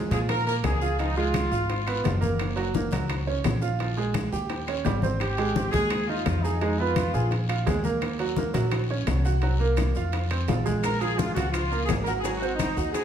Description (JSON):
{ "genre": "latin, salsa", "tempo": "171 BPM", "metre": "4/4", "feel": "straight", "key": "Bb minor", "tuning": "A4 = 440 Hz", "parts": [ { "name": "bright concert grand piano", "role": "accompaniment", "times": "0.0-13.0 s", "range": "F3 to Ab5", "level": "-29 LUFS", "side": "right 5 dB", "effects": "none" }, { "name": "clear horn section", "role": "melody", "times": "0.1-2.2, 5.2-7.3, 10.8-13.0 s", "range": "Eb4 to Bb4", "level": "-29 LUFS", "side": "equal", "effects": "none" }, { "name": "upright bass", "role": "bass", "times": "0.1-13.0 s", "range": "Gb1 to Bb2", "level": "-27 LUFS", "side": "left 1 dB", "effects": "none" }, { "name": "congas", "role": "percussion", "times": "0.1-13.0 s", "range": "none", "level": "-32 LUFS", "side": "left 4 dB", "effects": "none" }, { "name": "guiro", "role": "percussion", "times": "0.1-13.0 s", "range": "none", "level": "-43 LUFS", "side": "left 6 dB", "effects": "none" }, { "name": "timbales", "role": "percussion", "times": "0.1-13.0 s", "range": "none", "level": "-37 LUFS", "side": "right 5 dB", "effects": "none" }, { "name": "bongos", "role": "percussion", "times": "0.3-13.0 s", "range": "none", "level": "-35 LUFS", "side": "left 6 dB", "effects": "none" }, { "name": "claves", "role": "percussion", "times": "0.3-12.8 s", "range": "none", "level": "-44 LUFS", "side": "left 6 dB", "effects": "none" }, { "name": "maracas", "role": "percussion", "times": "10.8-13.0 s", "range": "none", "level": "-44 LUFS", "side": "left 6 dB", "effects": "none" } ], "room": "wet large studio reverb, RT60 1.1 s", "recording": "heard from further back in the room", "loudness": "-23 LUFS", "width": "side -9 dB against mid", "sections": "0.0-13.0 A section", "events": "none", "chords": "0.0 Bbm7; 1.0 Db7; 2.4 Gbmaj7; 3.8 Bb5; 4.5 Eb7; 5.2 Abmaj7; 6.6 Fdim; 7.3 Bb5; 8.0 Ebm7; 9.4 Gbmaj7#11/C; 10.1 F5; 10.8 Bbm7; 12.2 Ab7" }